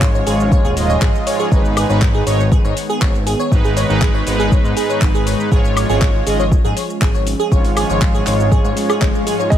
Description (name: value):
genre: progressive house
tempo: 120 BPM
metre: 4/4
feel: straight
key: unclear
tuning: A4 = 439 Hz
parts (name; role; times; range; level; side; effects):
- warm analog pad; sustained chords; 0.0-9.6 s; D#3 to C#4; -25 LUFS; right 1 dB; chorus, sidechain pumping
- soft supersaw; stabs; 0.0-9.6 s; G#2 to D#5; -20 LUFS; right 1 dB; phaser, sidechain pumping, ping-pong delay
- fat analog bass; bass; 0.0-9.6 s; D#1 to G#2; -20 LUFS; equal; sidechain pumping
- deep house drum kit; drums; 0.0-9.6 s; handclaps, hi-hat, ride cymbal, shaker, woodblock; -25 LUFS; left 2 dB; overdrive, sidechain pumping on cymbals, sidechain pumping on perc, sidechain pumping on hats
- electronic kick drum; drums; 0.0-9.6 s; none; -15 LUFS; equal; overdrive
- glassy wavetable pluck; arpeggios; 0.1-9.6 s; G#4 to C#5; -22 LUFS; right 1 dB; chorus, sidechain pumping, ping-pong delay
- swell; sound effects; 8.8-9.5 s; none; -24 LUFS; left 5 dB; none
- dark baby grand piano; melody; 9.5-9.6 s; D#5; -18 LUFS; right 3 dB; none
room: digital ambience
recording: none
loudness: -13 LUFS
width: side -10 dB against mid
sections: 0.0-9.6 A section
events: swell 8.8-9.5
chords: 0.0 C#/G#; 1.5 G#m; 5.5 C#/G#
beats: 0.02 0.52 1.02 | 1.52 2.02 2.52 3.02 | 3.52 4.02 4.52 5.02 | 5.52 6.02 6.52 7.02 | 7.52 8.02 8.52 9.02 | 9.52